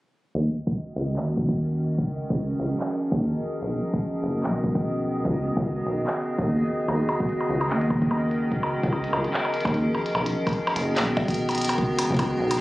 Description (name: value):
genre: IDM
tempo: 147 BPM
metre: 4/4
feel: swing 56% on 16ths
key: unclear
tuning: A4 = 440 Hz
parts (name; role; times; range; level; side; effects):
- icy glass pad; sustained chords; 0.6-12.6 s; Db3 to Bb4; -28 LUFS; equal; chorus, built-in reverb, vintage 12-bit sampler grit
- deep acid bass; bass; 0.4-12.5 s; F#1 to Eb2; -25 LUFS; equal; none
- bubbling stepped-filter texture; texture; 0.4-12.6 s; Eb5; -35 LUFS; equal; chorus, built-in reverb, sidechain pumping
- electronic kick drum; drums; 0.7-12.2 s; none; -27 LUFS; equal; none
- glitchy drum kit; drums; 1.2-12.6 s; handclaps, hi-hat, percussion blips; -29 LUFS; equal; digital delay
room: light reverb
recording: recorded on a phone in the room, studio reverb, compression, low-pass filter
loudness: -23 LUFS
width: side -18 dB against mid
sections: 0.4-12.6 A section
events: filter sweep on acid bass 0.4-12.6; filter sweep 0.4-12.6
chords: 0.4 Ebm7; 2.0 Bbm7/Db; 3.6 Bmaj7; 5.3 Db7sus4; 6.9 Ebm7; 8.5 Bbm7/Db; 10.1 Bmaj7; 11.8 Db7sus4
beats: | 0.35 0.76 1.17 1.58 | 1.99 2.39 2.80 3.21 | 3.62 4.03 4.43 4.84 | 5.25 5.66 6.07 6.47 | 6.88 7.29 7.70 8.11 | 8.52 8.92 9.33 9.74 | 10.15 10.56 10.96 11.37 | 11.78 12.19 12.60